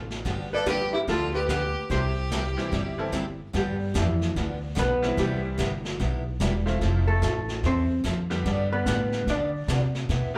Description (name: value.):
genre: country, western swing.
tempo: 146 BPM.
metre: 4/4.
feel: swing 64% on 8ths.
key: unclear.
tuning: A4 = 440 Hz.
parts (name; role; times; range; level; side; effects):
upright bass; bass; 0.0-10.4 s; E1 to D3; -30 LUFS; equal; none.
jazz brush drum kit; drums; 0.1-10.4 s; brushed snare drum, hi-hat, kick drum, snare drum; -37 LUFS; equal; none.
picked steel-string acoustic guitar; accompaniment; 0.2-10.3 s; C3 to A4; -36 LUFS; equal; plate reverb, slapback echo.
hollow-body jazz guitar; melody; 0.5-9.7 s; E3 to D5; -30 LUFS; equal; plate reverb, slapback echo.
clear fiddle; second line; 0.5-3.1 s; E4 to A4; -35 LUFS; equal; slapback echo.
bright upright piano; accompaniment; 0.7-10.4 s; D3 to A4; -36 LUFS; equal; plate reverb, slapback echo.
room: moderate club ambience, RT60 0.5 s.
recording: live gig heard through the venue's PA, club reverb.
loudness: -26 LUFS.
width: mono.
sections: 0.0-3.5 A section; 3.5-10.4 B section.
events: hollow-body jazz guitar solo 3.5-10.4.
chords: 0.3 G7; 1.9 C; 3.5 G7; 5.2 Cmaj7; 6.8 Fmaj7; 8.5 G.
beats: | 0.26 0.67 1.08 1.49 | 1.90 2.31 2.72 3.13 | 3.54 3.95 4.36 4.77 | 5.18 5.59 6.00 6.41 | 6.82 7.23 7.64 8.05 | 8.46 8.86 9.27 9.68 | 10.09.